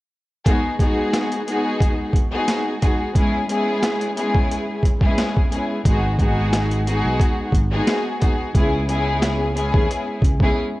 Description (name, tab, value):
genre	hip hop, boom-bap hip-hop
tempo	89 BPM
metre	4/4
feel	swing 55% on 16ths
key	G# minor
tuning	A4 = 441 Hz
part	warm studio string section	accompaniment	0.4-10.6 s	G#3 to G#4	-21 LUFS	left 1 dB	high-pass filter, low-pass filter
part	boom bap sampler-style drum kit	drums	0.5-10.6 s	hi-hat, kick drum, snare drum	-19 LUFS	equal	overdrive
part	sustaining fretless electric bass	bass	5.9-10.5 s	G#1 to D#2	-22 LUFS	equal	none
room	digital ambience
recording	worn, warbling old tape, cassette tape, warbly pitch drift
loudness	-17 LUFS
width	side -18 dB against mid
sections	0.5-10.8 A section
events	break 10.6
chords	0.5 G#m7; 3.2 C#m7; 5.9 G#m7; 8.5 C#m7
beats	| 0.46 1.13 1.81 2.48 | 3.15 3.83 4.50 5.18 | 5.85 6.53 7.20 7.87 | 8.55 9.22 9.90 10.57